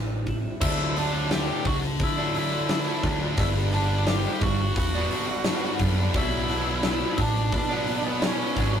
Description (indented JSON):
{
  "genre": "quiet-loud alternative rock",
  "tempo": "87 BPM",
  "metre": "4/4",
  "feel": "straight",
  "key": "D major",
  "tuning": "A4 = 440 Hz",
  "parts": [
    { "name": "twelve-string electric guitar", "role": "arpeggios", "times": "0.0-0.6 s", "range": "D3 to G4", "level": "-40 LUFS", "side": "equal", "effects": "none" },
    { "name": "picked electric bass", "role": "bass", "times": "0.0-8.8 s", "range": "E1 to D3", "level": "-27 LUFS", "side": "equal", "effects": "none" },
    { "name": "huge arena drum kit", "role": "drums", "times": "0.3-8.7 s", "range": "crash cymbal, hi-hat, kick drum, snare drum", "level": "-28 LUFS", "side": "equal", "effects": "none" },
    { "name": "octave-fuzz lead guitar", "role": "melody", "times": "0.6-8.7 s", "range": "B3 to G5", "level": "-29 LUFS", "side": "left 1 dB", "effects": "distortion" },
    { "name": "fuzz guitar", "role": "riff", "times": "0.6-8.8 s", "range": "G2 to D4", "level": "-30 LUFS", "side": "right 2 dB", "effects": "distortion" },
    { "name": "scooped high-gain guitar", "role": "riff", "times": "0.6-8.8 s", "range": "G2 to D4", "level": "-32 LUFS", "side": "left 5 dB", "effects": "distortion" }
  ],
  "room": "moderate booth ambience, RT60 0.2 s",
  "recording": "rough rehearsal-room recording",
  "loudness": "-22 LUFS",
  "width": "side -8 dB against mid",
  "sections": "0.6-8.8 A section",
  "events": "none",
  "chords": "0.0 A7sus4; 0.6 Dadd9; 3.4 G; 6.1 Bmadd9"
}